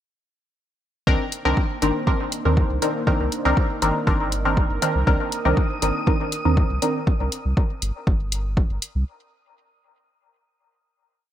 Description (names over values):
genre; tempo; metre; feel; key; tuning
dub techno; 120 BPM; 4/4; straight; C minor; A4 = 441 Hz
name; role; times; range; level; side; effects
dark analog pad; sustained chords; 1.4-7.0 s; Bb3 to C5; -31 LUFS; right 1 dB; chorus, sidechain pumping
filtered dub chord stab; stabs; 1.1-7.0 s; Eb3 to Bb4; -23 LUFS; equal; chorus, phaser, sidechain pumping, dub echo
soft dub sub bass; bass; 1.1-9.0 s; G1 to Eb2; -24 LUFS; equal; sidechain pumping
electronic kick drum; drums; 1.1-8.7 s; none; -21 LUFS; equal; none
electronic hi-hat; drums; 1.3-8.9 s; none; -28 LUFS; left 1 dB; none
wind-like tuned noise texture; texture; 5.4-7.1 s; Eb6; -33 LUFS; right 2 dB; built-in reverb, sidechain pumping
room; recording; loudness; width
light reverb; bright 1980s-style digital production; -19 LUFS; side -11 dB against mid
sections
1.1-9.1 groove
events
none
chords
1.1 Cm9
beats
| 1.07 1.57 2.07 2.57 | 3.07 3.57 4.07 4.57 | 5.07 5.57 6.07 6.57 | 7.07 7.57 8.07 8.57